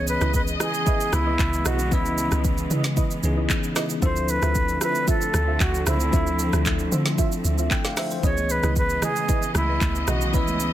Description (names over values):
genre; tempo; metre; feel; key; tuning
amapiano; 114 BPM; 4/4; straight; C# minor; A4 = 440 Hz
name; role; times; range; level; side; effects
concert flute; melody; 0.0-10.7 s; E4 to C#5; -26 LUFS; equal; tape echo
bell-like tine electric piano; accompaniment; 0.0-10.7 s; E3 to G5; -29 LUFS; left 4 dB; auto-pan
dark symphonic string section; sustained chords; 0.0-10.7 s; C#3 to D#5; -31 LUFS; right 1 dB; sidechain pumping
deep log drum bass; bass; 0.0-10.7 s; B1 to D3; -25 LUFS; equal; none
afro-pop drum kit; drums; 0.1-10.7 s; handclaps, hi-hat, kick drum, rim click, shaker, snare drum; -25 LUFS; equal; soft clipping on snare
deep mellow chord stab; stabs; 0.2-10.5 s; E4 to E5; -33 LUFS; right 4 dB; chorus, tape echo
congas; percussion; 8.2-10.6 s; none; -34 LUFS; right 4 dB; none
room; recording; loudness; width
little or no reverb; dense, heavily limited modern master; -20 LUFS; side -12 dB against mid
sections
0.0-10.7 A section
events
none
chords
0.0 C#m9; 4.0 Dm9; 8.2 C#m9